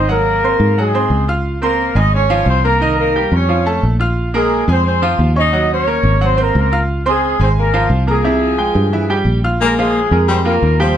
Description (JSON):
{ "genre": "latin", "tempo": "177 BPM", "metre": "4/4", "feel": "straight", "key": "unclear", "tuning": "A4 = 440 Hz", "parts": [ { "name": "mellow horn section", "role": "melody", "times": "0.0-11.0 s", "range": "F3 to Eb5", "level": "-16 LUFS", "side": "equal", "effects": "none" }, { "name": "bright concert grand piano", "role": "accompaniment", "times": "0.0-10.9 s", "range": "C3 to F6", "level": "-18 LUFS", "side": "right 2 dB", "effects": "none" }, { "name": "fingered electric bass", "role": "bass", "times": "0.0-11.0 s", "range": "Ab1 to Ab2", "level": "-16 LUFS", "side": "equal", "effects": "none" }, { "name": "breathy baritone saxophone", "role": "second line", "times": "9.6-11.0 s", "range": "F3 to Bb3", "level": "-18 LUFS", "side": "left 4 dB", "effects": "analog delay" } ], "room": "light reverb", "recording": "close, detailed microphones", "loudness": "-12 LUFS", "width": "side -10 dB against mid", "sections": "0.0-9.6 A section; 9.6-11.0 B section", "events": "none", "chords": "0.1 Ab9; 1.4 Dbmaj7; 2.8 Cm7; 3.5 Faug; 4.2 Bbm9; 5.5 Ebm7; 6.2 Ab13; 6.9 Dbmaj7; 8.2 C7b13; 9.6 Bbsus2" }